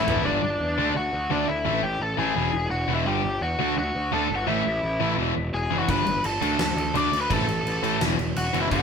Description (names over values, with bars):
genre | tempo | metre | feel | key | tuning
punk rock | 170 BPM | 4/4 | straight | unclear | A4 = 439 Hz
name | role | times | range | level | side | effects
biting lead guitar | melody | 0.0-8.8 s | D4 to D6 | -26 LUFS | left 1 dB | overdrive
sludgy distorted guitar | riff | 0.0-8.8 s | E2 to D4 | -30 LUFS | right 7 dB | overdrive
tight distorted guitar | riff | 0.0-8.8 s | E2 to D4 | -29 LUFS | left 9 dB | distortion
fuzz picked electric bass | bass | 0.0-8.8 s | E1 to E2 | -29 LUFS | equal | overdrive
big rock drum kit | drums | 0.1-0.2, 5.9-8.8 s | crash cymbal, kick drum, snare drum, toms | -28 LUFS | right 1 dB | none
room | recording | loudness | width
moderate large studio reverb, RT60 1.5 s | band playing live in one room | -22 LUFS | side -6 dB against mid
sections
0.2-8.8 A section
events
drum fill 0.0; half time 0.2-8.8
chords
0.2 G5; 0.8 D; 1.7 A5; 2.4 E; 3.1 G5; 3.6 D; 4.5 A5; 5.2 E; 5.9 G; 6.4 D5; 7.3 A5; 8.0 E5